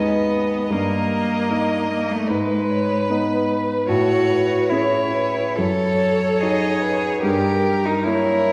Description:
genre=classical, slow romantic movement for piano quartet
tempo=62-76 BPM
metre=4/4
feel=rubato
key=unclear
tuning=A4 = 441 Hz
part: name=rich violin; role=melody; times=0.0-8.5 s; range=Bb4 to D#5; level=-28 LUFS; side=equal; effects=none
part: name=clear cello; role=second line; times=0.0-8.5 s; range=G#3 to A4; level=-25 LUFS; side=equal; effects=none
part: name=dark violin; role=second line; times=0.0-8.5 s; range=A4 to D#5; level=-28 LUFS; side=equal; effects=none
part: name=warm grand piano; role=accompaniment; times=0.0-8.5 s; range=D#2 to D#5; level=-24 LUFS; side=equal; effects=none
room=wet scoring stage reverb, RT60 2.0 s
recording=heard from further back in the room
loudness=-20 LUFS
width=mono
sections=0.0-8.5 A section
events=none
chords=0.0 G#m; 0.7 D#/G; 2.3 G#m; 3.9 Amaj7; 5.6 D#m7b5/F#; 7.2 Gdim7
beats=| 0.70 1.50 2.30 3.10 | 3.88 4.71 5.58 6.41 | 7.22 8.05

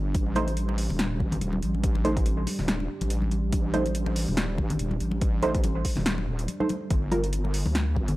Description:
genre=deep dubstep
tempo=142 BPM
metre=4/4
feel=swing 57% on 16ths, half-time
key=unclear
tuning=A4 = 440 Hz
part: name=dark analog pad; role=sustained chords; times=0.0-8.2 s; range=G3 to D4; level=-35 LUFS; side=right 2 dB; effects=chorus, vintage 12-bit sampler grit
part: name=wobble bass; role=bass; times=0.0-8.2 s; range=Eb1 to D2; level=-28 LUFS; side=equal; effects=chorus
part: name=deep house drum kit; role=drums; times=0.1-8.2 s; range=hi-hat, snare drum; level=-31 LUFS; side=equal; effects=overdrive
part: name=electronic kick drum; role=drums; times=0.1-8.1 s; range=none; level=-26 LUFS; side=equal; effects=overdrive
part: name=congas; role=percussion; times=0.1-8.2 s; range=none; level=-34 LUFS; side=left 2 dB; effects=none
part: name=filtered dub chord stab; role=stabs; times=0.4-7.2 s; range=G3 to C5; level=-30 LUFS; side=right 2 dB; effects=chorus, dub echo
room=digital ambience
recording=dry, gritty hardware recording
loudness=-24 LUFS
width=side -18 dB against mid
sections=0.0-8.2 A section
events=none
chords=0.1 Adim; 6.9 Gm7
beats=| 0.15 0.57 0.99 1.41 | 1.84 2.26 2.68 3.10 | 3.53 3.95 4.37 4.79 | 5.22 5.64 6.06 6.49 | 6.91 7.33 7.75

